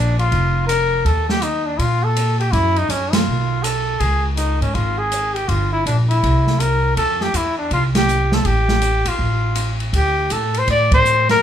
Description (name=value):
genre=jazz, small-group swing and bop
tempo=162 BPM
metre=4/4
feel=swing 64% on 8ths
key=unclear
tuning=A4 = 440 Hz
part: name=warm trumpet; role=melody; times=0.0-11.4 s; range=Db4 to D5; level=-19 LUFS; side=left 1 dB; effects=none
part: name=upright bass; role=bass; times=0.0-11.4 s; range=F1 to Bb2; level=-19 LUFS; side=equal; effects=none
part: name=open jazz drum kit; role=drums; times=0.2-11.4 s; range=hi-hat, kick drum, ride cymbal, snare drum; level=-23 LUFS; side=right 1 dB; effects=none
room=light reverb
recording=band playing live in one room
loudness=-15 LUFS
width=side -10 dB against mid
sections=0.0-9.9 A section; 9.9-11.4 B section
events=band accent 3.1, 7.9, 10.9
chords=0.0 Bb5; 1.1 Eb5; 2.5 Ebm7/Gb (rootless); 3.3 Asus2/B; 4.0 Db5; 5.5 Gm; 6.2 C7; 7.0 Fadd9; 9.2 F/A; 9.9 D7sus4